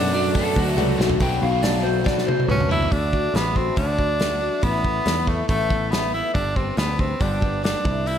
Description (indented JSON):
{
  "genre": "folk rock and heartland rock",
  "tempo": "140 BPM",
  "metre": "4/4",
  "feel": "straight",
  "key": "D mixolydian",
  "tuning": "A4 = 440 Hz",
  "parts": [
    { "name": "edgy tenor saxophone", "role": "melody", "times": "0.0-8.2 s", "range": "A3 to E4", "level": "-24 LUFS", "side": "right 1 dB", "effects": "none" },
    { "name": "picked acoustic archtop guitar", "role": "accompaniment", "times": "0.0-8.2 s", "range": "G2 to G4", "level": "-28 LUFS", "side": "left 6 dB", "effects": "none" },
    { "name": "warm baby grand piano", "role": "accompaniment", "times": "0.0-1.2 s", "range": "F#4 to D5", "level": "-33 LUFS", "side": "right 3 dB", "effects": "none" },
    { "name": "overdriven semi-hollow guitar", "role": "riff", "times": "0.0-2.9 s", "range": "B2 to B4", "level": "-27 LUFS", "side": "equal", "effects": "harmonic tremolo, slapback echo" },
    { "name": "picked electric bass", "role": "bass", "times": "0.0-8.2 s", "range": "G1 to F#2", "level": "-25 LUFS", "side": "equal", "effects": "none" },
    { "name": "electric slide guitar", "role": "second line", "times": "0.1-2.8 s", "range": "F#4 to G5", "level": "-27 LUFS", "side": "equal", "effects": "slapback echo" },
    { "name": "natural country drum kit", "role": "drums", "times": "0.1-8.2 s", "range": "hi-hat, kick drum, snare drum, toms", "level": "-24 LUFS", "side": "equal", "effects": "none" }
  ],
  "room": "moderate lush hall reverb, RT60 2.0 s",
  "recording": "big arena sound",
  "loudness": "-19 LUFS",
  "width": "side -9 dB against mid",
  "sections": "0.0-1.2 A section; 1.2-2.9 B section; 2.9-8.2 C section",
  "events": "drum fill 0.8-1.2, 2.1-2.9",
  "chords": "0.0 Bm7; 2.9 D; 4.6 Asus2; 6.3 G"
}